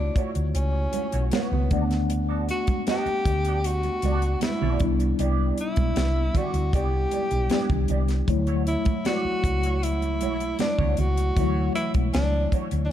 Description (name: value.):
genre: lush 1970s-style soul.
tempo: 78 BPM.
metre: 4/4.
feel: straight.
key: unclear.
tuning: A4 = 440 Hz.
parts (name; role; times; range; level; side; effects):
breathy tenor saxophone; melody; 0.0-12.9 s; B3 to G4; -28 LUFS; equal; none.
mellow tine electric piano; accompaniment; 0.0-12.9 s; E3 to F#5; -30 LUFS; left 4 dB; medium stereo tremolo.
hollow-body short-scale fingered electric bass; bass; 0.0-12.9 s; B1 to D2; -25 LUFS; equal; none.
electric guitar through a small old amp; riff; 0.2-12.9 s; A3 to E5; -35 LUFS; right 5 dB; wah, spring reverb.
tight funk drum kit; drums; 0.2-12.9 s; hi-hat, kick drum, snare drum; -27 LUFS; equal; none.
congas; percussion; 0.9-12.5 s; none; -34 LUFS; right 6 dB; none.
room: light reverb.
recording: dark, warm production.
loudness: -22 LUFS.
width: side -11 dB against mid.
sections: 0.0-12.9 A section.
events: none.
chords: 0.0 Dmaj9 (rootless); 1.7 Gmaj9/D; 4.8 Cmaj9; 8.3 Bm11 (rootless).